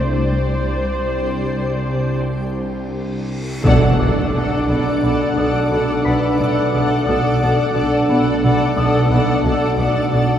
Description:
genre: cinematic, suspense film score.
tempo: 88 BPM.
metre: 5/4.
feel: straight.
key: B phrygian.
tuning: A4 = 440 Hz.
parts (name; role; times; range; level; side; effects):
warm studio violin section; melody; 0.0-10.4 s; D5 to F#5; -26 LUFS; left 3 dB; none.
warm studio violin section; second line; 0.0-10.4 s; C5 to D5; -26 LUFS; left 2 dB; none.
rich studio viola section; accompaniment; 0.0-10.4 s; A4 to C5; -24 LUFS; right 1 dB; none.
backwards swelling texture; sustained chords; 0.0-10.4 s; D4 to D5; -24 LUFS; left 1 dB; built-in reverb.
warm studio cello section; bass; 0.0-10.2 s; B2 to A3; -26 LUFS; equal; none.
warm studio double bass section; bass; 0.0-10.2 s; B1 to C2; -24 LUFS; right 1 dB; none.
bowed-like drone; drone; 0.0-10.4 s; B1 to C2; -27 LUFS; equal; built-in reverb.
Celtic harp; texture; 0.0-9.9 s; B4 to D6; -29 LUFS; left 2 dB; none.
marimba with hard mallets; riff; 0.1-10.3 s; B2 to C4; -23 LUFS; right 1 dB; none.
reverse cymbal and impact; sound effects; 3.4-7.1 s; none; -26 LUFS; equal; none.
mellow French horn section; sustained chords; 3.6-10.3 s; A3 to D4; -24 LUFS; equal; none.
timpani; percussion; 3.6-4.6 s; none; barely audible; none; none.
rich studio violin section; texture; 3.6-10.1 s; D6 to F#6; -33 LUFS; left 1 dB; none.
room: wet concert hall reverb, RT60 2.3 s.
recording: heard from further back in the room.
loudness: -15 LUFS.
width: side -10 dB against mid.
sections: 0.0-3.6 A section; 3.6-10.4 A section.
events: break 2.2-3.6; reverse cymbal 3.4; band accent 3.6-4.3; impact 3.6-7.1.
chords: 0.0 Csus2; 3.6 Bm7.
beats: | 0.12 0.82 1.52 2.23 2.94 | 3.64 4.34 5.03 5.71 6.39 | 7.07 7.75 8.43 9.11 9.78.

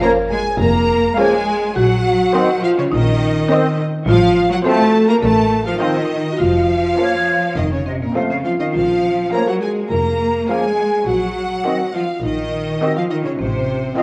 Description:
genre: cinematic.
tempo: 104 BPM.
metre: 4/4.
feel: straight.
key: Bb minor.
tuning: A4 = 439 Hz.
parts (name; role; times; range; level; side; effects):
marimba with soft mallets; melody; 0.0-14.0 s; Bb3 to Bb4; -24 LUFS; equal; none.
rich studio violin section; melody; 0.0-14.0 s; Eb5 to F5; -29 LUFS; equal; none.
rich studio violin section; second line; 0.0-14.0 s; Bb4 to Bb5; -26 LUFS; equal; none.
small flute group; second line; 0.0-14.0 s; C5 to F5; -27 LUFS; equal; none.
warm clarinet; second line; 0.0-14.0 s; A3 to C4; -30 LUFS; equal; none.
dark bassoon; accompaniment; 0.0-14.0 s; Eb3 to F3; -27 LUFS; equal; none.
rich studio viola section; accompaniment; 0.0-14.0 s; C4 to C5; -28 LUFS; equal; none.
dark French horn section; sustained chords; 0.0-14.0 s; Bb3 to Bb4; -24 LUFS; equal; none.
clear studio cello section; bass; 0.0-14.0 s; Bb2 to Bb3; -23 LUFS; equal; none.
clear studio double bass section; bass; 0.6-13.8 s; F1 to Bb1; -24 LUFS; equal; none.
room: moderate scoring stage reverb, RT60 1.6 s.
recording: worn, warbling old tape, cassette tape, warbly pitch drift.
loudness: -17 LUFS.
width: mono.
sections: 0.0-14.0 A section.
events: none.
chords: 0.0 Bbm; 1.8 Cm7b5/Bb; 4.1 F/A; 6.4 Bbm/F; 7.6 F; 8.7 Bbm; 11.1 Cm7b5/Bb; 13.4 F/A.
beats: 0.02 0.60 1.18 | 1.76 2.34 2.92 3.50 | 4.08 4.65 5.23 5.81 | 6.39 6.98 7.57 8.15 | 8.74 9.33 9.91 10.49 | 11.07 11.65 12.23 12.81 | 13.39 13.96.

